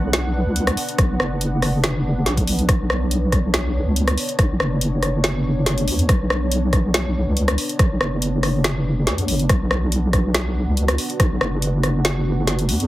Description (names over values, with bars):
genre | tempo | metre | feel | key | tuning
deep dubstep | 141 BPM | 4/4 | half-time | B minor | A4 = 440 Hz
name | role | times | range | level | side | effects
dark analog pad | sustained chords | 0.0-12.9 s | B3 to F#5 | -27 LUFS | right 1 dB | chorus
deep soft wobble bass | bass | 0.0-12.9 s | F#1 to E2 | -20 LUFS | equal | chorus
deep house drum kit | drums | 0.1-12.9 s | hi-hat, rim click, snare drum | -22 LUFS | equal | none
electronic kick drum | drums | 1.0-11.3 s | none | -19 LUFS | equal | none
room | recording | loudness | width
light reverb | heavily compressed radio sound, multiband compression | -17 LUFS | side -16 dB against mid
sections
0.0-12.9 A section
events
none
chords
0.0 Bmadd9